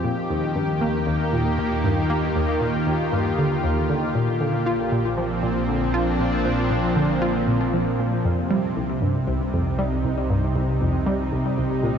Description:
ambient, sequencer-driven space music; 117 BPM; 4/4; straight; A4 = 439 Hz
lush unison pad; sustained chords; 0.0-12.0 s; Bb2 to G4; -22 LUFS; equal; chorus
analog pluck; riff; 0.0-12.0 s; C2 to F4; -24 LUFS; equal; chorus, ping-pong delay
analog drone; bass; 0.7-12.0 s; Bb1 to Eb2; -30 LUFS; equal; chorus
wet cathedral reverb, RT60 5.5 s; in a vast, echoing space, cassette tape, nothing above 7.8 kHz; -20 LUFS; side -7 dB against mid
0.0-12.0 A section
0.0 Ebadd9; 4.1 Bbadd9; 8.3 Cm

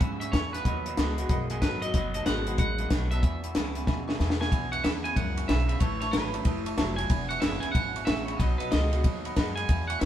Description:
rockabilly; 186 BPM; 4/4; swing 64% on 8ths; E major; A4 = 440 Hz
twangy electric guitar; melody; 0.0-10.1 s; B4 to G#5; -33 LUFS; right 3 dB; spring reverb
clear upright piano; accompaniment; 0.0-10.1 s; D#5 to D#6; -39 LUFS; equal
picked steel-string acoustic guitar; accompaniment; 0.0-10.1 s; E2 to F#4; -38 LUFS; left 4 dB
electric guitar through a small old amp; riff; 0.0-10.1 s; E2 to G#3; -36 LUFS; right 2 dB
upright bass; bass; 0.0-10.1 s; E1 to G#2; -31 LUFS; equal
compact cocktail drum kit; drums; 0.0-10.1 s; hi-hat, kick drum, ride cymbal, snare drum; -28 LUFS; equal
light reverb; band playing live in one room; -25 LUFS; side -11 dB against mid
0.0-4.5 A section; 4.5-10.1 B section
drum fill 3.9-4.5
0.0 E; 0.7 B7; 3.2 E; 5.8 A; 7.1 E; 8.4 B7

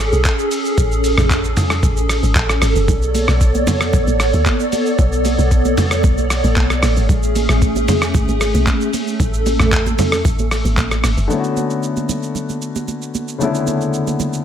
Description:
amapiano; 114 BPM; 4/4; straight; B dorian; A4 = 441 Hz
hollow soft pad; sustained chords; 0.0-11.3 s; A3 to D5; -19 LUFS; right 1 dB; ensemble chorus, sidechain pumping
deep log drum bass; bass; 0.0-11.3 s; F#1 to D2; -17 LUFS; equal
lo-fi sampler-style drum kit; drums; 0.1-14.4 s; handclaps, hi-hat, kick drum, rim click, shaker, toms; -18 LUFS; equal
congas; percussion; 2.9-14.3 s; -25 LUFS; right 7 dB
warm grand piano; accompaniment; 11.3-14.4 s; C#3 to F#4; -19 LUFS; left 4 dB
light reverb; -14 LUFS; side -9 dB against mid
0.0-11.3 A section; 11.3-14.4 B section
drop 0.0-11.3
0.0 Amaj7; 2.9 Bm9; 6.8 Amaj7; 11.3 Bm9

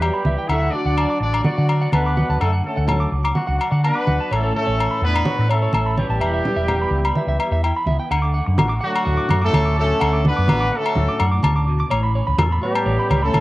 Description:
highlife guitar band; 126 BPM; 4/4; straight; D major; A4 = 440 Hz
warm horn section; melody; 0.0-13.4 s; F#3 to E5; -22 LUFS; equal; cassette tape
clean electric guitar; accompaniment; 0.0-13.4 s; A2 to A4; -30 LUFS; left 3 dB; ensemble chorus, cassette tape
electric guitar at the edge of break-up; arpeggios; 0.0-13.4 s; C#5 to D6; -26 LUFS; right 3 dB; cassette tape, tape echo
hollow-body short-scale fingered electric bass; bass; 0.0-13.4 s; E1 to D3; -20 LUFS; equal
agogo bells; percussion; 0.0-13.4 s; -26 LUFS; left 3 dB
congas; percussion; 0.2-13.4 s; -22 LUFS; right 1 dB
light reverb, studio reverb; home recording on cassette; -17 LUFS; side -17 dB against mid
0.0-8.1 A section; 8.1-13.4 B section
0.5 D; 4.3 Aadd9; 6.2 Em; 8.1 D; 11.9 Aadd9

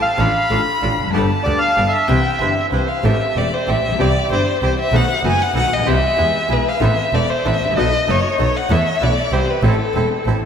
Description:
tango; 191 BPM; 3/4; rubato; C major, A minor from 3.0 s; A4 = 437 Hz
bandoneon; melody; 0.0-2.7 s; D5 to F5; -20 LUFS; equal
rich violin; second line; 0.0-10.2 s; A4 to B5; -19 LUFS; left 2 dB; diffuse ambient delay
clear grand piano; accompaniment; 0.2-10.4 s; E1 to A4; -22 LUFS; left 4 dB; ensemble chorus
bandoneon; stabs; 0.2-10.4 s; B3 to B4; -26 LUFS; right 6 dB; diffuse ambient delay
clear double bass; bass; 0.2-10.4 s; E1 to E2; -20 LUFS; right 2 dB
wet plate reverb, RT60 3.8 s; dreamy mix soaked in reverb; -14 LUFS; side -7 dB against mid
0.0-3.0 A section; 3.0-10.5 B section
violin solo 3.0-10.5
0.2 Dm/A; 1.1 Gadd9; 2.1 Cmaj7; 3.0 Am7; 4.0 C; 4.9 B7; 5.9 C; 6.2 E; 6.8 Amadd9; 7.8 B7; 8.7 Esus4; 9.3 C; 9.6 Am

